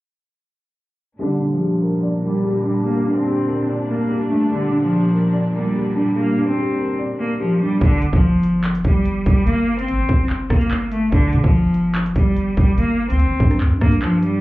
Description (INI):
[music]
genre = hip hop, drill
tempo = 145 BPM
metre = 4/4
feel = half-time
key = G minor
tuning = A4 = 439 Hz
[part]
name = bright cello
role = melody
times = 1.2-14.4 s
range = D3 to C4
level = -19 LUFS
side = equal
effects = low-pass filter
[part]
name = felt-muted upright piano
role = accompaniment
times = 1.2-7.8 s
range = G3 to D5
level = -21 LUFS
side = left 1 dB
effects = low-pass filter
[part]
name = rich symphonic string section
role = sustained chords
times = 1.2-7.8 s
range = Bb2 to D4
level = -26 LUFS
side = right 1 dB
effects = low-pass filter
[part]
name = long sustained 808-style bass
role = bass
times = 7.8-14.4 s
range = G1 to D3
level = -20 LUFS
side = equal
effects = none
[part]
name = drill drum kit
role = drums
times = 7.8-14.3 s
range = handclaps, hi-hat, kick drum, rim click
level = -18 LUFS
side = equal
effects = none
[sound]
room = light reverb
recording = heard muffled through a wall, club reverb, EQ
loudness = -16 LUFS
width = side -18 dB against mid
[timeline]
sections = 1.2-7.8 A section; 7.8-14.4 B section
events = filter sweep 1.2-7.8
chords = 1.2 Gm; 11.1 G5